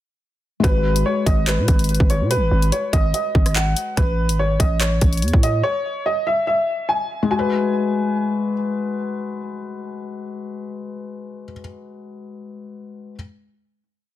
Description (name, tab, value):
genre	hip hop, drill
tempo	144 BPM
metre	4/4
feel	half-time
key	G# phrygian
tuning	A4 = 445 Hz
part	dark grand piano	melody	0.6-8.5 s	B4 to G#5	-22 LUFS	equal	ping-pong delay
part	felt-muted upright piano	accompaniment	0.6-4.0, 7.2-13.2 s	G#3 to B4	-24 LUFS	left 4 dB	none
part	growling 808-style bass	bass	0.6-5.6 s	G#1 to B2	-20 LUFS	equal	none
part	drill drum kit	drums	0.6-5.5 s	handclaps, hi-hat, kick drum, rim click	-18 LUFS	equal	none
room	studio reverb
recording	dense, heavily limited modern master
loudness	-17 LUFS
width	side -13 dB against mid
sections	0.6-7.3 verse; 7.3-10.6 final chord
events	none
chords	0.6 G#m7; 4.0 A; 7.3 G#m7